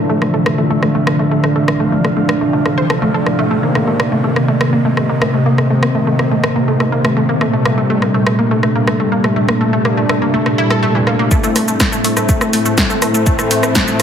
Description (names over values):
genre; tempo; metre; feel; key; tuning
melodic techno; 123 BPM; 4/4; straight; A phrygian; A4 = 440 Hz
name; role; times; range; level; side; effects
deep dark ambient pad; sustained chords; 0.0-14.0 s; C3 to F5; -20 LUFS; right 1 dB; chorus, built-in reverb, sidechain pumping
wide unison pluck; arpeggios; 0.0-14.0 s; E3 to C5; -17 LUFS; equal; sidechain pumping, dub echo
brassy analog pad; stabs; 0.0-14.0 s; Bb2 to E4; -17 LUFS; left 1 dB; chorus, tremolo, sidechain pumping, dub echo
swarming drone; drone; 0.0-14.0 s; A2 to C3; -23 LUFS; equal; built-in reverb, sidechain pumping
punchy analog drum machine; drums; 0.2-14.0 s; hi-hat, rim click, shaker, snare drum; -19 LUFS; equal; overdrive, studio ambience, sidechain pumping on perc, sidechain pumping on hats
electronic kick drum; drums; 11.3-13.9 s; none; -16 LUFS; equal; studio ambience
riser; sound effects; 13.0-14.0 s; none; -31 LUFS; equal; none
room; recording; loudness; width
wet digital room reverb, RT60 1.1 s; heavily compressed radio sound, multiband compression; -12 LUFS; side -8 dB against mid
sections
0.0-11.3 A section; 11.3-14.0 B section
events
filter sweep on synth arpeggio sound 0.0-11.3; filter sweep on analog synth pad 0.0-11.3, 11.3-14.0; build-up 11.3-14.0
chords
0.0 Dmadd9; 3.5 Cm7; 7.4 Gmadd9; 11.3 Am